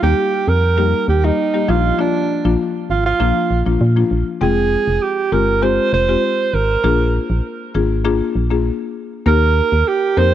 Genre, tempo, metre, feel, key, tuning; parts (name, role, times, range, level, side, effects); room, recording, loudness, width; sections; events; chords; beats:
afrobeats; 99 BPM; 4/4; straight; F dorian; A4 = 439 Hz
warm alto saxophone; melody; 0.0-10.3 s; D4 to C5; -18 LUFS; right 6 dB; cassette tape, tape echo
buzzing marimba with medium mallets; accompaniment; 0.0-10.3 s; F3 to G5; -20 LUFS; left 7 dB; cassette tape
organ-like FM bass; bass; 0.0-10.3 s; F1 to Bb2; -17 LUFS; equal
light reverb, small room reverb; home recording on cassette; -14 LUFS; side -11 dB against mid
0.0-4.4 A section; 4.4-10.3 B section
0.0 Eb; 1.7 Bb; 4.4 Fmadd9; 6.8 Bb7; 9.3 Eb
0.17 0.78 1.39 | 1.99 2.60 3.20 3.81 | 4.42 5.02 5.63 6.23 | 6.84 7.45 8.05 8.66 | 9.26 9.87